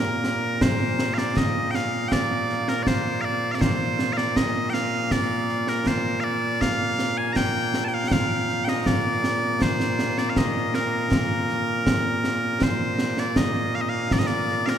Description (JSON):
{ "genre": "scottish traditional, Scottish pipe music", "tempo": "80 BPM", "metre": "2/4", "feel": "straight", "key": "Bb major", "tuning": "A4 = 440 Hz", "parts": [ { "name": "loud bright bagpipes", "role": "melody", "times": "0.0-14.8 s", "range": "Bb2 to Bb5", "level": "-23 LUFS", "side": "equal", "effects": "none" }, { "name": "concert snare drum and concert bass drum", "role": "drums", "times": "0.2-14.8 s", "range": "none", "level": "-25 LUFS", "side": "equal", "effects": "none" } ], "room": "wet cathedral reverb, RT60 6.1 s", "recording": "in a vast, echoing space", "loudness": "-21 LUFS", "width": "side -9 dB against mid", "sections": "0.6-12.6 A section; 12.6-14.8 A section", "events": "none", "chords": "none", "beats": "| 0.61 1.36 | 2.12 2.87 | 3.62 4.37 | 5.12 5.87 | 6.62 7.37 | 8.12 8.87 | 9.62 10.37 | 11.12 11.87 | 12.62 13.37 | 14.12" }